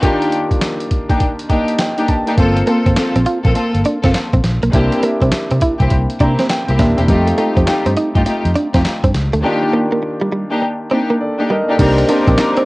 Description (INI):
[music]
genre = R&B, new jack swing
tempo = 102 BPM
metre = 4/4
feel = swing 64% on 16ths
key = unclear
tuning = A4 = 440 Hz
[part]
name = clear grand piano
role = accompaniment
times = 0.0-12.7 s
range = Eb3 to Bb5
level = -20 LUFS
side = equal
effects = cassette tape
[part]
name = warm studio string section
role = stabs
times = 0.0-12.5 s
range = A3 to Bb4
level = -18 LUFS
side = left 1 dB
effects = cassette tape
[part]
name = boom bap sampler-style drum kit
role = drums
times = 0.0-12.7 s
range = crash cymbal, handclaps, hi-hat, kick drum, snare drum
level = -18 LUFS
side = equal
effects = cassette tape
[part]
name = vintage muted fingered electric bass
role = bass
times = 2.4-12.4 s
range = Eb1 to C3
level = -16 LUFS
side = equal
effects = none
[part]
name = direct-recorded clean electric guitar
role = riff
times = 2.6-12.6 s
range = G3 to F4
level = -18 LUFS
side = right 2 dB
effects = analog chorus, cassette tape
[part]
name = warm analog pad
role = sustained chords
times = 11.8-12.7 s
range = C5 to D6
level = -21 LUFS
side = equal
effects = chorus, cassette tape
[sound]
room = little or no reverb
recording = home recording on cassette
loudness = -13 LUFS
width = side -22 dB against mid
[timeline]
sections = 0.0-11.8 A section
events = grand piano fill 1.2-2.4, 5.9-7.1; break 9.4-11.8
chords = 0.0 Ebmaj7; 2.4 Gm11; 4.7 C7; 7.1 F9; 9.4 Ebmaj7; 11.8 Cm9